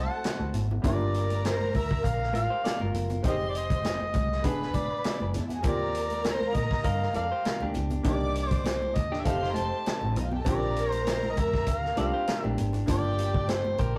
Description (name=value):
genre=lush 1970s-style soul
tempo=100 BPM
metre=4/4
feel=swing 54% on 16ths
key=F major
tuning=A4 = 440 Hz
part: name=overdriven harmonica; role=melody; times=0.0-14.0 s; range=Bb4 to Bb5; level=-34 LUFS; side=equal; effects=none
part: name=dark studio string section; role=second line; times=0.0-13.8 s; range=Bb3 to D6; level=-37 LUFS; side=equal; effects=none
part: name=clear baby grand piano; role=accompaniment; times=0.0-14.0 s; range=G3 to A5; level=-38 LUFS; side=equal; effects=none
part: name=direct-recorded clean electric guitar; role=riff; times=0.0-3.2, 6.8-14.0 s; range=D4 to Eb5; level=-38 LUFS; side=equal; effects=none
part: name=vintage muted fingered electric bass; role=bass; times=0.0-14.0 s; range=E1 to Bb2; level=-34 LUFS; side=equal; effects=none
part: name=vintage drum kit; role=drums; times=0.2-14.0 s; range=hi-hat, kick drum, snare drum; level=-34 LUFS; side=equal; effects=none
part: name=congas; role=percussion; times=0.4-13.9 s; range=none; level=-40 LUFS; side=equal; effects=none
room=moderate small room reverb, RT60 0.5 s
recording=rough rehearsal-room recording, tube saturation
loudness=-28 LUFS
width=mono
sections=0.0-14.0 A section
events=none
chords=0.0 D7; 0.8 Gm7; 3.2 Fm7; 4.4 E7; 5.6 Eb69; 8.1 Cm7; 9.3 F7; 10.5 Bb6; 12.9 Gm7